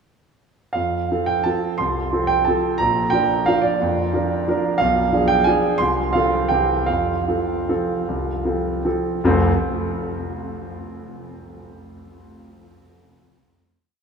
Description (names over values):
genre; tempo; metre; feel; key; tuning
classical, piano waltz; 144-188 BPM; 3/4; rubato; F major; A4 = 440 Hz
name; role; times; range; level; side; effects
warm concert grand piano; solo; 0.7-9.5 s; F1 to C6; -18 LUFS; right 2 dB; none
room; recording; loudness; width
wet cathedral reverb, RT60 6.1 s; in a vast, echoing space; -18 LUFS; side -6 dB against mid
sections
0.8-9.2 A section; 9.2-10.3 final chord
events
none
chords
0.8 F; 2.8 Bb; 4.8 Bdim7; 5.8 F/C; 6.5 C; 6.9 F